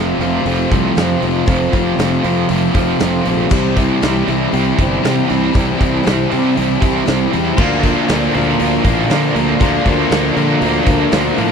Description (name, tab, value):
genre	classic rock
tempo	118 BPM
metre	4/4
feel	straight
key	F major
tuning	A4 = 439 Hz
part	picked old ladder-braced acoustic guitar	accompaniment	0.0-11.5 s	F2 to Bb4	-24 LUFS	right 5 dB	none
part	overdriven electric guitar	riff	0.0-11.5 s	F2 to C4	-19 LUFS	right 15 dB	harmonic tremolo
part	overdriven semi-hollow guitar	riff	0.0-11.5 s	F2 to F4	-18 LUFS	left 13 dB	none
part	fuzz fingered electric bass	bass	0.0-11.5 s	F1 to D3	-19 LUFS	equal	overdrive
part	huge arena drum kit	drums	0.2-11.5 s	crash cymbal, hi-hat, kick drum, snare drum	-20 LUFS	equal	none
part	distorted electric guitar	riff	7.6-11.5 s	Bb2 to Bb3	-19 LUFS	equal	overdrive
room	little or no reverb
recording	dry, close 1970s-style studio recording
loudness	-12 LUFS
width	side -6 dB against mid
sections	0.0-11.5 A section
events	none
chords	0.0 F; 3.5 C; 7.6 Bb